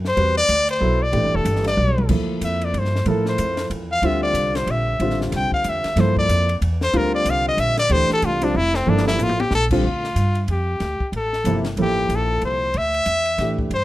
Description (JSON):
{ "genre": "modal jazz", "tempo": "186 BPM", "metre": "3/4", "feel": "swing 62% on 8ths", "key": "unclear", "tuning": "A4 = 440 Hz", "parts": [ { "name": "upright bass", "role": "bass", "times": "0.0-13.8 s", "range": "E1 to A2", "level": "-23 LUFS", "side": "equal", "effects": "none" }, { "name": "compact cocktail drum kit", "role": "drums", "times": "0.0-13.8 s", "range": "crash cymbal, hi-hat, kick drum, ride cymbal, snare drum, toms", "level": "-30 LUFS", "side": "left 1 dB", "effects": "none" }, { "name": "clear trumpet", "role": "melody", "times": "0.1-13.8 s", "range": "C4 to G5", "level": "-21 LUFS", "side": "left 1 dB", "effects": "none" }, { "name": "dark concert grand piano", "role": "accompaniment", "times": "0.2-13.7 s", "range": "C3 to B4", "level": "-23 LUFS", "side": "right 1 dB", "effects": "none" } ], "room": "light reverb", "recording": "close, detailed microphones", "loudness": "-18 LUFS", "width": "side -16 dB against mid", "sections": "0.0-2.1 A section; 2.1-9.8 A section; 9.8-13.8 B section", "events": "trumpet solo 0.0-9.8; drum fill 1.8-2.1, 8.9-9.5", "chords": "0.0 A9sus4; 2.1 Dm11; 6.0 Gm11" }